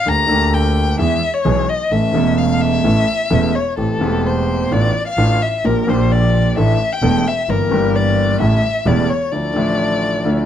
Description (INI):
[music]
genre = tango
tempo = 130 BPM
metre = 4/4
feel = rubato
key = unclear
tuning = A4 = 439 Hz
[part]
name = dark violin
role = second line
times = 0.0-10.5 s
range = A4 to Bb5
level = -19 LUFS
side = left 4 dB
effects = none
[part]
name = clear concert grand piano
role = accompaniment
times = 0.1-10.5 s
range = E1 to A4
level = -17 LUFS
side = right 1 dB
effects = none
[part]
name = dark double bass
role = bass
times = 0.1-9.1 s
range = E1 to E2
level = -19 LUFS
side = right 1 dB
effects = none
[sound]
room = little or no reverb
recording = dark, warm production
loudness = -14 LUFS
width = side -10 dB against mid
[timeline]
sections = 0.0-10.5 A section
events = violin solo 0.0-10.5; break 9.3-10.5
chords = 0.1 Gmadd9/D; 1.0 E; 1.9 A; 3.8 Am7; 4.7 Dmadd9/A; 5.6 Gm7/Bb; 6.6 Asus4; 7.5 Edim/G; 8.4 A7; 9.3 Dmadd9